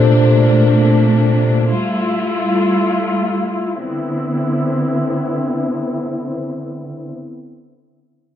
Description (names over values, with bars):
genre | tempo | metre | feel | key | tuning
amapiano | free time | none | none | C major | A4 = 441 Hz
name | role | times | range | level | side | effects
tine electric piano | accompaniment | 0.0-1.7 s | Bb2 to C5 | -12 LUFS | equal | medium stereo tremolo, low-pass filter
warm symphonic string section | sustained chords | 0.0-7.2 s | C3 to F4 | -17 LUFS | equal | low-pass filter
room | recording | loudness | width
moderate lush hall reverb, RT60 2.1 s | dark, warm production | -14 LUFS | side -10 dB against mid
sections
0.0-3.8 A section; 3.8-8.1 B section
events
filter sweep 0.0-3.8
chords
0.0 Bbmaj9; 1.7 Fmaj9; 3.8 Cmaj9